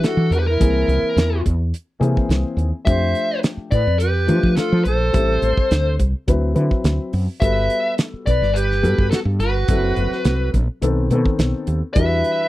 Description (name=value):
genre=electric jazz fusion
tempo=106 BPM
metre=4/4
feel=straight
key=unclear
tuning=A4 = 441 Hz
part: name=dark smooth lead guitar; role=melody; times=0.0-12.5 s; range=A4 to E5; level=-22 LUFS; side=left 2 dB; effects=overdrive, slapback echo
part: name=dark baby grand piano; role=accompaniment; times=0.0-12.5 s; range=D#3 to B4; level=-24 LUFS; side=left 3 dB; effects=none
part: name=woody fretless electric bass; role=bass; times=0.0-12.2 s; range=F#1 to F3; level=-19 LUFS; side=equal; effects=none
part: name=damped 70s drum kit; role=drums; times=0.0-12.4 s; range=hi-hat, kick drum, snare drum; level=-20 LUFS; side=right 1 dB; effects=none
part: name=bright reedy silver concert flute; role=second line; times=0.1-12.5 s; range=E4 to C5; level=-25 LUFS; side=right 4 dB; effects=none
room=little or no reverb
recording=dry, close 1970s-style studio recording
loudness=-16 LUFS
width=side -16 dB against mid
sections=0.0-12.5 A section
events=none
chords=0.0 Em9; 0.6 C7b13; 2.9 F69; 5.1 Am7; 6.3 D13; 7.4 Gmaj9; 9.7 F#m7b5; 10.8 B7b9; 12.0 Em9